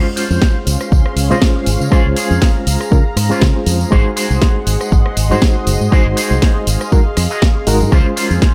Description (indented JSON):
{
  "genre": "nu-disco, nu disco",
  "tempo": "120 BPM",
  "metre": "4/4",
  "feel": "swing 55% on 16ths",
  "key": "Db major",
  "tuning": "A4 = 440 Hz",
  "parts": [
    { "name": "reed electric piano", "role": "accompaniment", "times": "0.0-8.5 s", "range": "Ab3 to C5", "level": "-22 LUFS", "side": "equal", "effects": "fast tremolo, low-pass filter, digital delay" },
    { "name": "lush unison pad", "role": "sustained chords", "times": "0.0-8.5 s", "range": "Db4 to C6", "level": "-26 LUFS", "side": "equal", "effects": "chorus, sidechain pumping" },
    { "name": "electric guitar with an envelope filter", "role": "riff", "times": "0.0-8.5 s", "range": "Db4 to Eb5", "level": "-27 LUFS", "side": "equal", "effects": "subtle chorus, low-pass filter, digital delay" },
    { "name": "house drum kit", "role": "drums", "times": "0.2-8.5 s", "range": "hi-hat, rim click, snare drum", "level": "-24 LUFS", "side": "equal", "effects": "none" },
    { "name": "tambourine", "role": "percussion", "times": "0.2-8.5 s", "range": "none", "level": "-29 LUFS", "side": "equal", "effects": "none" },
    { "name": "fingered electric bass with an envelope filter", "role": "bass", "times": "0.3-8.4 s", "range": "Gb1 to Db3", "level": "-18 LUFS", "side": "equal", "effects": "none" },
    { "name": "electronic kick drum", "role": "drums", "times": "0.4-8.5 s", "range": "none", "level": "-14 LUFS", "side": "equal", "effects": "none" }
  ],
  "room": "digital ambience",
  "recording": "none",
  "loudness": "-14 LUFS",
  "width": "mono",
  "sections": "0.0-8.5 A section",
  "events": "filter sweep on reed electric piano 0.0-8.5",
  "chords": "0.0 Dbmaj7; 3.9 Ab7; 7.9 Dbmaj7",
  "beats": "0.42 0.92 1.42 | 1.92 2.42 2.92 3.42 | 3.92 4.42 4.92 5.42 | 5.92 6.42 6.92 7.42 | 7.92 8.42"
}